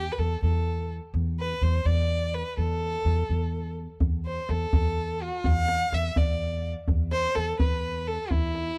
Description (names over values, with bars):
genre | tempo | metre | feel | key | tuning
Persian modal ensemble | 84 BPM (dotted quarters) | 6/8 | straight | E dastgah shur | A4 = 440 Hz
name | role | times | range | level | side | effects
clear violin | melody | 0.0-8.8 s | E4 to F5+39c | -32 LUFS | equal | none
upright bass | bass | 0.0-8.7 s | E2 | -30 LUFS | equal | none
tombak | percussion | 4.0-8.7 s | none | -29 LUFS | equal | none
room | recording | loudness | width
small room reverb | dry, close 1970s-style studio recording | -27 LUFS | mono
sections
0.0-8.8 A section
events
none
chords
none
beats
0.43 | 1.14 1.86 | 2.58 3.29 | 4.01 4.73 | 5.44 6.16 | 6.88 7.59 | 8.31